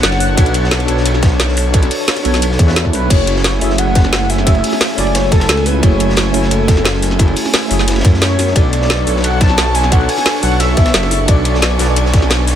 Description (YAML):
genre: liquid drum and bass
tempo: 176 BPM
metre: 4/4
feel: straight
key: F# minor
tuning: A4 = 440 Hz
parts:
  - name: warm velvety synth lead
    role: melody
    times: 0.0-12.3 s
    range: A4 to A5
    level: -20 LUFS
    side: left 1 dB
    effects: chorus, dub echo
  - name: tine electric piano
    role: accompaniment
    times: 0.0-12.6 s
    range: A3 to G#5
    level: -20 LUFS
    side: equal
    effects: overdrive, fast stereo tremolo, ping-pong delay
  - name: airy breathy pad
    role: sustained chords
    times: 0.0-12.6 s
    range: A3 to C#6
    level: -22 LUFS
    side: right 1 dB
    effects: chorus
  - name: swelling detuned saw bass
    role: bass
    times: 0.0-12.6 s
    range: F#1 to F#2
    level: -16 LUFS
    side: equal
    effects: none
  - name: crunchy breakbeat drum kit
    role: drums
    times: 0.0-12.6 s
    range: hi-hat, ride cymbal, snare drum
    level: -24 LUFS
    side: equal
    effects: high-pass filter on cymbals, high-pass filter on hats, high-pass filter on snare, high-pass filter on room
  - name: drum and bass drum kit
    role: drums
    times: 0.0-12.5 s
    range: crash cymbal, hi-hat, snare drum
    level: -17 LUFS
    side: equal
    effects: none
  - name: electronic kick drum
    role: drums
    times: 0.4-12.2 s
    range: none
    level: -11 LUFS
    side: equal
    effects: none
room: light reverb, digital ambience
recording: none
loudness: -11 LUFS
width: side -10 dB against mid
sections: 0.0-3.1 A section; 3.1-12.6 A section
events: drop 0.0-3.1, 3.1-12.6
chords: 0.0 Bm9; 3.1 F#m9; 8.6 Bm9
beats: 0.03 | 0.38 0.72 1.06 1.40 | 1.74 2.08 2.42 2.76 | 3.10 3.44 3.78 4.12 | 4.47 4.81 5.15 5.49 | 5.83 6.17 6.51 6.85 | 7.19 7.53 7.88 8.22 | 8.56 8.90 9.24 9.58 | 9.92 10.26 10.60 10.94 | 11.28 11.62 11.97 12.31